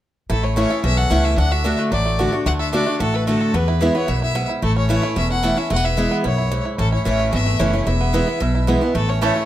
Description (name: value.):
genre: bluegrass.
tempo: 222 BPM.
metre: 4/4.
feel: straight.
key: A major.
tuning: A4 = 440 Hz.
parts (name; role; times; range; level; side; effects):
bluegrass banjo; melody; 0.3-9.5 s; E3 to A4; -26 LUFS; right 4 dB; none.
clear fiddle; melody; 0.3-9.5 s; A4 to F#5; -24 LUFS; left 4 dB; none.
picked acoustic archtop guitar; accompaniment; 0.3-9.5 s; E2 to F#4; -21 LUFS; equal; none.
upright bass; bass; 0.3-9.3 s; E1 to E2; -20 LUFS; equal; none.
mandolin; stabs; 9.2-9.3 s; A3 to A5; -21 LUFS; right 7 dB; none.
room: light reverb.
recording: none.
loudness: -16 LUFS.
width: side -12 dB against mid.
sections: 0.3-9.5 A section.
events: none.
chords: 0.3 A; 1.4 D; 3.5 E; 4.6 A; 5.7 E; 6.8 A; 7.9 E; 9.0 A.